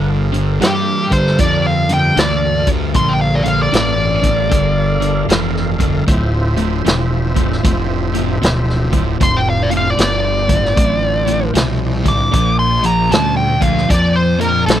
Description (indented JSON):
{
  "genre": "blues rock power trio and southern rock",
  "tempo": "77 BPM",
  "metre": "4/4",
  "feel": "swing 64% on 8ths",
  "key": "D minor",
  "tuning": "A4 = 436 Hz",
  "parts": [
    { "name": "tonewheel organ", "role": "sustained chords", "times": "0.0-14.8 s", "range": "E4 to Ab5", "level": "-28 LUFS", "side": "right 4 dB", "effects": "slow rotary speaker, chorus vibrato" },
    { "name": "fuzz guitar", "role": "riff", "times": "0.0-14.8 s", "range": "D2 to G3", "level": "-18 LUFS", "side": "equal", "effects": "distortion" },
    { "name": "fuzz fingered electric bass", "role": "bass", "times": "0.0-14.8 s", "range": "D1 to G2", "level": "-19 LUFS", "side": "equal", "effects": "overdrive" },
    { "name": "vintage drum kit", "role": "drums", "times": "0.3-14.8 s", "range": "hi-hat, kick drum, snare drum", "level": "-16 LUFS", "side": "equal", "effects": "none" },
    { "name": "smooth overdriven lead guitar", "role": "melody", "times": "0.6-14.8 s", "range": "G4 to D6", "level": "-17 LUFS", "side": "equal", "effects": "wah" }
  ],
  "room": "little or no reverb",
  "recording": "dry, close 1970s-style studio recording",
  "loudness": "-12 LUFS",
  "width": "side -11 dB against mid",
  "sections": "0.0-14.8 A section",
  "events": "none",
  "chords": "0.0 Gm7; 6.1 Dm7; 12.3 Bb7"
}